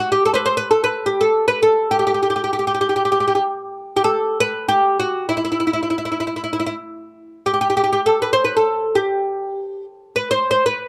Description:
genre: Arabic maqam ensemble.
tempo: free time.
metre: none.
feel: none.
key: unclear.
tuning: A4 = 441 Hz.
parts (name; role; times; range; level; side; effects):
oud; solo; 0.0-10.9 s; E4 to C5; -19 LUFS; equal; none.
room: light reverb.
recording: none.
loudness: -19 LUFS.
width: mono.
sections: 0.0-7.2 A section; 7.2-10.9 A section.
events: none.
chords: none.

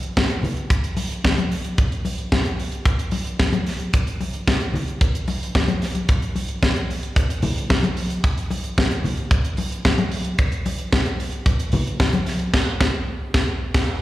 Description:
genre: disco.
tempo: 112 BPM.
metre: 4/4.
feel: straight.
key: none.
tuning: none.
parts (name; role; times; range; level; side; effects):
tight funk drum kit; drums; 0.0-13.9 s; crash cymbal, hi-hat, kick drum, snare drum; -20 LUFS; equal; none.
congas; percussion; 0.2-12.3 s; none; -25 LUFS; left 2 dB; slapback echo.
room: moderate club reverb, RT60 0.5 s.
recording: live gig heard through the venue's PA, recital hall reverb.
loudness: -19 LUFS.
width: side -16 dB against mid.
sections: 0.0-6.1 A section; 6.1-14.0 B section.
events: band accent 12.5-14.0.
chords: none.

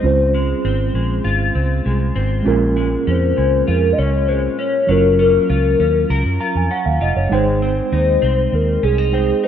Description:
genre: indie pop, bedroom pop.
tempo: 99 BPM.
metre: 4/4.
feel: straight.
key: Ab major.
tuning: A4 = 436 Hz.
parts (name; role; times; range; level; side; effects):
hollow clarinet-like synth lead; melody; 0.0-9.5 s; Ab4 to Eb5; -17 LUFS; left 4 dB; wide subtle chorus, slapback echo.
clean electric guitar; accompaniment; 0.0-9.5 s; Bb2 to Bb4; -24 LUFS; left 5 dB; analog chorus, vibrato effect.
mellow tine electric piano; accompaniment; 0.0-9.5 s; Gb3 to Bb5; -20 LUFS; right 5 dB; medium stereo tremolo.
vintage muted fingered electric bass; bass; 0.0-9.3 s; F1 to Gb2; -18 LUFS; equal; none.
room: moderate plate reverb, RT60 2.7 s.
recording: rough home demo mix.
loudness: -14 LUFS.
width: side -9 dB against mid.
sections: 0.0-9.5 A section.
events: none.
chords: 0.0 Dbmaj7; 2.5 Bbm7; 4.9 Gbmaj7; 7.3 Abmaj7.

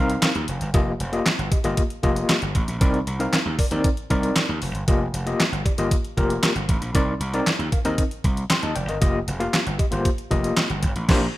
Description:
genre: early-eighties boogie funk.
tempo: 116 BPM.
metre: 4/4.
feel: straight.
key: unclear.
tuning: A4 = 440 Hz.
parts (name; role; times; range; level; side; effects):
overdriven tine electric piano; accompaniment; 0.0-11.3 s; Bb3 to C6; -25 LUFS; left 2 dB; medium tremolo, plate reverb.
gritty slap bass; bass; 0.0-11.3 s; F1 to Eb2; -26 LUFS; equal; overdrive.
detuned 8-bit digital drum machine; drums; 0.1-11.3 s; crash cymbal, handclaps, hi-hat, kick drum, snare drum; -22 LUFS; equal; none.
room: light reverb.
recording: rough home demo mix.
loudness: -20 LUFS.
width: side -16 dB against mid.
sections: 0.0-11.4 A section.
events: band accent 11.1.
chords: 0.0 Cm7; 0.7 F9sus4; 2.8 Cm9; 4.9 F9sus4; 6.9 Cm9; 9.0 F9sus4.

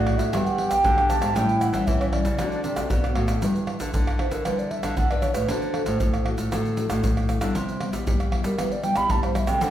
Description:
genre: samba and choro.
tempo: 116 BPM.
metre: 4/4.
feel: straight.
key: D major, G major from 3.4 s.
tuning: A4 = 441 Hz.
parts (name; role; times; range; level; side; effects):
mellow hollow alto ocarina; melody; 0.0-9.7 s; Bb4 to B5; -25 LUFS; right 2 dB; none.
warm trombone; second line; 0.0-3.4 s; C#4 to G4; -30 LUFS; equal; none.
nylon-string guitar; accompaniment; 0.0-9.7 s; G2 to B4; -30 LUFS; left 2 dB; none.
nylon-string guitar; bass; 0.0-9.7 s; G2 to G3; -28 LUFS; equal; none.
surdo, pandeiro, tamborim and tube shaker; percussion; 0.1-9.7 s; none; -25 LUFS; equal; none.
room: wet large studio reverb, RT60 1.3 s.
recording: band playing live in one room.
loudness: -21 LUFS.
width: side -11 dB against mid.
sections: 0.0-3.4 A section; 3.4-9.7 B section.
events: ocarina solo 3.4-9.7.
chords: 0.3 Gmaj7; 1.4 A7; 2.4 D7; 3.4 G6; 5.5 D; 7.6 Cmaj7.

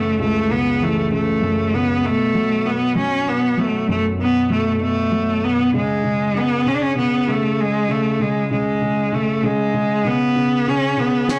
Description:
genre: six-eight pop ballad.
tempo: 65 BPM (dotted quarters).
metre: 6/8.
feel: straight.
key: unclear.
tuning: A4 = 440 Hz.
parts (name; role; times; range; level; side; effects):
bright cello; melody; 0.0-11.4 s; G#3 to D4; -20 LUFS; equal; none.
dark upright piano; accompaniment; 0.0-11.4 s; C#2 to F#3; -24 LUFS; equal; none.
snare drum; drums; 11.3-11.4 s; none; -26 LUFS; equal; none.
room: moderate plate reverb, RT60 1.6 s, studio ambience.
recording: blown-out, overdriven recording, overdrive.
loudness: -19 LUFS.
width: mono.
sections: 0.0-11.4 A section.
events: none.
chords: 0.0 F#m7; 2.0 B5; 5.7 N.C..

